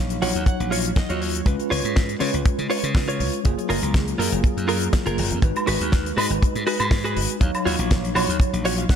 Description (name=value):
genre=nu-disco, nu disco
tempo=121 BPM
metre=4/4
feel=swing 53% on 16ths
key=G# dorian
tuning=A4 = 439 Hz
part: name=mellow tine electric piano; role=accompaniment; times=0.0-9.0 s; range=F#3 to E#5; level=-26 LUFS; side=equal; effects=medium stereo tremolo, low-pass filter, tape echo
part: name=glassy slap bass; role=bass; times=0.0-8.8 s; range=F#1 to C#3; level=-26 LUFS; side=equal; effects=none
part: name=damped 70s drum kit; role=drums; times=0.1-9.0 s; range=hi-hat, snare drum, woodblock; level=-28 LUFS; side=left 2 dB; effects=none
part: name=direct-recorded clean electric guitar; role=riff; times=0.2-9.0 s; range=E#4 to F#5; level=-27 LUFS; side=right 2 dB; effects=wide subtle chorus, tape echo
part: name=kick drum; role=drums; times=0.5-9.0 s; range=none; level=-19 LUFS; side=equal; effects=none
room=light reverb, small room ambience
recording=none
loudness=-19 LUFS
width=side -8 dB against mid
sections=0.0-9.0 A section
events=clean electric guitar fill 0.0-1.5, 8.4-9.0; filter sweep on tine electric piano 0.0-9.0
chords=0.0 D#m9; 1.5 C#7; 3.4 F#maj9; 5.4 G#m7; 7.4 D#m9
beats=0.47 0.97 | 1.46 1.96 2.45 2.95 | 3.44 3.94 4.44 4.93 | 5.43 5.92 6.42 6.92 | 7.41 7.91 8.40 8.90